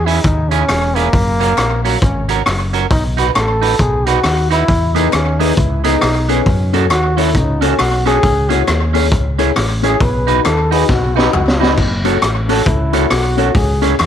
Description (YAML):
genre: ska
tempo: 135 BPM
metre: 4/4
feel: swing 62% on 8ths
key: unclear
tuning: A4 = 440 Hz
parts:
  - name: clear trombone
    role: melody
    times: 0.0-13.8 s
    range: F#3 to B4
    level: -19 LUFS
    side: equal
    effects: none
  - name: fingered electric bass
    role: bass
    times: 0.0-14.1 s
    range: E1 to F#2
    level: -17 LUFS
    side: equal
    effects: none
  - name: electric guitar at the edge of break-up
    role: accompaniment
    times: 0.1-13.9 s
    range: B3 to B4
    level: -20 LUFS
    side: right 12 dB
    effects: none
  - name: raw garage drum kit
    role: drums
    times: 0.1-14.1 s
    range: crash cymbal, hi-hat, kick drum, rim click, snare drum, toms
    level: -17 LUFS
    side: equal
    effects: slapback echo
  - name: group handclap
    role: percussion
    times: 0.7-14.1 s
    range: none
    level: -30 LUFS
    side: left 10 dB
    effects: none
  - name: dark upright piano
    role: stabs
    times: 4.9-13.9 s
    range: B3 to D#5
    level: -20 LUFS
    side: left 13 dB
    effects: slapback echo
room: light reverb, small room ambience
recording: 1960s-style stereo with parts hard left and right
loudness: -12 LUFS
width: side -9 dB against mid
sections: 0.0-14.1 A section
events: trombone solo 0.0-14.1; drum fill 10.9-11.8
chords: 0.0 C#m; 1.1 F#; 2.9 B; 4.7 E; 6.5 F#m; 8.2 C#m; 10.0 B; 11.8 F#m; 13.6 C#m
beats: 0.24 0.69 | 1.13 1.58 2.02 2.46 | 2.91 3.35 3.80 4.24 | 4.68 5.13 5.57 6.02 | 6.46 6.90 7.35 7.79 | 8.23 8.68 9.12 9.56 | 10.01 10.45 10.89 11.34 | 11.78 12.22 12.66 13.11 | 13.55 13.99